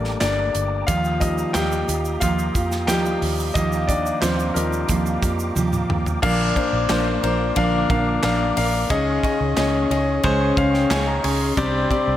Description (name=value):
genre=piano-driven pop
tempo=90 BPM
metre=4/4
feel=straight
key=Bb major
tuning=A4 = 441 Hz
part: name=warm concert grand piano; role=accompaniment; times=0.0-12.2 s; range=Bb2 to Bb5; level=-22 LUFS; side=left 3 dB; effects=none
part: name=mellow tonewheel organ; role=sustained chords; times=0.0-12.2 s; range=G4 to Eb6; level=-32 LUFS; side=right 1 dB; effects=chorus vibrato, fast rotary speaker
part: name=vintage muted fingered electric bass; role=bass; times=0.0-12.2 s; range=G1 to F2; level=-25 LUFS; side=right 1 dB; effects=none
part: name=modern studio drum kit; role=drums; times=0.0-12.1 s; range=crash cymbal, handclaps, hi-hat, kick drum, ride cymbal, snare drum, toms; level=-26 LUFS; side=right 1 dB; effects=none
part: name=fingerpicked steel-string acoustic guitar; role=riff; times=0.9-12.2 s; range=Bb2 to Bb4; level=-26 LUFS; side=right 4 dB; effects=none
part: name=egg shaker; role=percussion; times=0.9-6.2 s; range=none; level=-37 LUFS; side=right 8 dB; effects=none
room=moderate scoring stage reverb, RT60 1.9 s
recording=none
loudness=-18 LUFS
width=side -12 dB against mid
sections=0.0-6.2 A section; 6.2-12.2 B section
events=grand piano solo 0.0-6.2; drum fill 5.6-6.2; grand piano fill 10.2-11.6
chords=0.0 Gmadd9; 0.9 Ebadd9; 6.2 Bb; 8.9 Dbsus2; 11.6 Csus2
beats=0.22 | 0.89 1.55 2.22 2.89 | 3.56 4.23 4.89 5.56 | 6.23 6.90 7.57 8.23 | 8.90 9.57 10.24 10.90 | 11.57